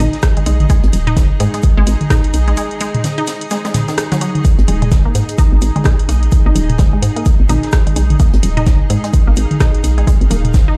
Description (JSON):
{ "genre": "minimal techno", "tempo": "128 BPM", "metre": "4/4", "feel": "swing 59% on 16ths", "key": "unclear", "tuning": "A4 = 439 Hz", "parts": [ { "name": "resonant blip pluck", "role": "riff", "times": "0.0-10.7 s", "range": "D#3 to D#4", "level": "-25 LUFS", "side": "equal", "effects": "chorus, sidechain pumping, tape echo" }, { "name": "hollow knocking FM bass", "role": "bass", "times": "0.0-10.7 s", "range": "D#1 to G#2", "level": "-17 LUFS", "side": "equal", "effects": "tube saturation, sidechain pumping" }, { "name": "granular cloud pad", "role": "texture", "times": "0.0-10.8 s", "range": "D#4 to E#5", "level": "-28 LUFS", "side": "equal", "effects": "built-in reverb, sidechain pumping" }, { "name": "booming analog drum machine", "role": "drums", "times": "0.1-10.7 s", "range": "hi-hat, rim click", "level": "-26 LUFS", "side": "equal", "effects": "none" }, { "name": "tight funk drum kit", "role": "drums", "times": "0.1-10.7 s", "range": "hi-hat, shaker, snare drum", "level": "-34 LUFS", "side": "equal", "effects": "high-pass filter on hats, high-pass filter on snare, high-pass filter on perc, high-pass filter on room" }, { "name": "electronic kick drum", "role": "drums", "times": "0.2-10.7 s", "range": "none", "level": "-15 LUFS", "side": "equal", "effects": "none" }, { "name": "electronic toms", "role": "percussion", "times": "0.4-10.7 s", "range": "none", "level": "-22 LUFS", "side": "equal", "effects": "none" } ], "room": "small room ambience", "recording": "played on a big sound system in a bare room, large studio reverb", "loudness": "-14 LUFS", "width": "mono", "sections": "0.0-10.8 A section", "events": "break 2.6-4.4", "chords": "0.0 G#5", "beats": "0.23 | 0.70 1.17 1.63 2.10 | 2.57 3.04 3.51 3.98 | 4.45 4.92 5.38 5.85 | 6.32 6.79 7.26 7.73 | 8.20 8.67 9.13 9.60 | 10.07 10.54" }